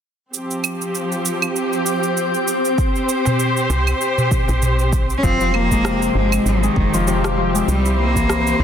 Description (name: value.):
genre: organic downtempo.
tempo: 98 BPM.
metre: 4/4.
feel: swing 56% on 16ths.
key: F minor.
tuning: A4 = 442 Hz.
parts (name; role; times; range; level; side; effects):
rich symphonic string section; sustained chords; 0.3-8.6 s; F3 to C5; -22 LUFS; left 1 dB; sidechain pumping.
electronic shaker, claves and rim click; drums; 0.3-8.6 s; none; -25 LUFS; right 5 dB; none.
drifting glass-harmonics texture; texture; 1.0-5.3 s; C4 to C5; -24 LUFS; equal; chorus, built-in reverb.
electronic kick drum; drums; 2.8-8.3 s; none; -20 LUFS; equal; overdrive.
darbuka; percussion; 3.3-4.8 s; none; -23 LUFS; right 2 dB; none.
woody FM bass; bass; 3.7-8.6 s; F1 to Db2; -20 LUFS; equal; sidechain pumping.
rich cello; melody; 5.2-8.6 s; Eb3 to Db4; -20 LUFS; equal; tape echo.
Celtic harp; arpeggios; 5.2-8.6 s; C3 to E4; -21 LUFS; left 4 dB; tape echo.
room: light reverb, small room reverb.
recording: dense, heavily limited modern master.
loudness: -16 LUFS.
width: side -8 dB against mid.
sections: 0.3-5.2 A section; 5.2-8.6 B section.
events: none.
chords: 0.3 F5; 2.8 C5; 5.2 Fm7; 7.7 C7.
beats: | 0.34 0.95 1.56 2.17 | 2.79 3.40 4.01 4.62 | 5.24 5.85 6.46 7.07 | 7.68 8.30.